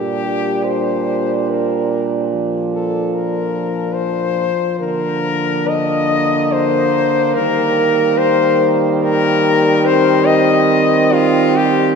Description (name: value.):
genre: classical, lyrical piece for horn quartet.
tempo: 72 BPM.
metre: 3/4.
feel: uneven beats, rubato.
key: unclear.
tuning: A4 = 440 Hz.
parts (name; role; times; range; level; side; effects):
clear French horn; melody; 0.0-12.0 s; F4 to Eb5; -17 LUFS; left 5 dB; none.
warm French horn; second line; 0.0-12.0 s; Bb3 to D4; -20 LUFS; right 7 dB; none.
mellow French horn; accompaniment; 0.0-12.0 s; F3 to G3; -22 LUFS; left 1 dB; none.
dark French horn; bass; 0.0-12.0 s; Bb2 to Eb3; -19 LUFS; right 2 dB; none.
room: wet cathedral reverb, RT60 4.3 s.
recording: recorded in a church or concert hall.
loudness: -13 LUFS.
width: side -5 dB against mid.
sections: 0.0-12.0 A section.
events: none.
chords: 0.0 Gm/Bb; 2.3 Bb; 4.8 Bb/D; 7.4 Eb.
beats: 0.65 1.50 | 2.33 3.15 3.96 | 4.80 5.69 6.53 | 7.36 8.18 9.02 | 9.86 10.71 11.58.